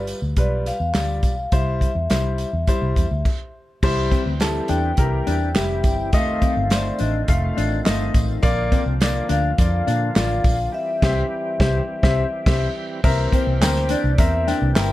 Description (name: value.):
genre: uptempo 1960s-style soul.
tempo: 104 BPM.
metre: 4/4.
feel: straight.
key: unclear.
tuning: A4 = 440 Hz.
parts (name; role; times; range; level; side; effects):
vibraphone with soft mallets; melody; 0.0-14.9 s; C5 to G5; -27 LUFS; left 1 dB; none.
bright baby grand piano; accompaniment; 0.0-14.9 s; G3 to G5; -26 LUFS; left 2 dB; none.
vintage muted fingered electric bass; bass; 0.0-14.9 s; F1 to Bb2; -22 LUFS; equal; none.
natural country drum kit; drums; 0.1-14.9 s; crash cymbal, hi-hat, kick drum, snare drum; -20 LUFS; equal; none.
tambourine and handclaps; percussion; 0.1-14.9 s; none; -34 LUFS; right 2 dB; none.
bright tonewheel organ; sustained chords; 3.8-14.9 s; D3 to G4; -31 LUFS; right 1 dB; overdrive, chorus vibrato, slow rotary speaker.
mellow electric guitar; riff; 4.1-14.9 s; C4 to F4; -27 LUFS; left 5 dB; none.
room: light reverb.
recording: dark, warm production.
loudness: -18 LUFS.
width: side -16 dB against mid.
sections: 0.0-3.8 A section; 3.8-13.0 B section; 13.0-14.9 C section.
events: stop 3.3-3.8; band accent 10.7-13.0.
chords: 0.0 G7; 1.5 C; 6.1 F7; 8.4 Bb; 10.7 C; 13.0 C7.